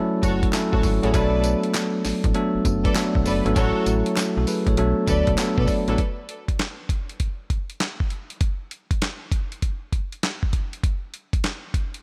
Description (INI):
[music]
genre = R&B, new jack swing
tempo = 99 BPM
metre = 4/4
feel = swing 65% on 16ths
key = B minor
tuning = A4 = 439 Hz
[part]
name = bell-like tine electric piano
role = accompaniment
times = 0.0-6.0 s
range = F#3 to C#5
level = -25 LUFS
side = equal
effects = none
[part]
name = warm studio string section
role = stabs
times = 0.2-6.0 s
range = F#4 to D5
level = -31 LUFS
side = equal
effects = delay
[part]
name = slap-like FM bass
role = bass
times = 0.2-6.0 s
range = F#1 to B2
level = -26 LUFS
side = equal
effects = none
[part]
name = dusty soul sampler-style drum kit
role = drums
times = 0.2-12.0 s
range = handclaps, hi-hat, kick drum, snare drum, tambourine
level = -26 LUFS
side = equal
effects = none
[part]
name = group handclap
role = percussion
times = 0.5-5.6 s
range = none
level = -40 LUFS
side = equal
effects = none
[sound]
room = light reverb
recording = none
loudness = -23 LUFS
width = mono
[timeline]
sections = 0.0-6.0 A section; 6.0-12.0 B section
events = none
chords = 0.0 A6; 1.1 Bm7; 3.6 A6; 4.8 Bm7; 6.0 N.C.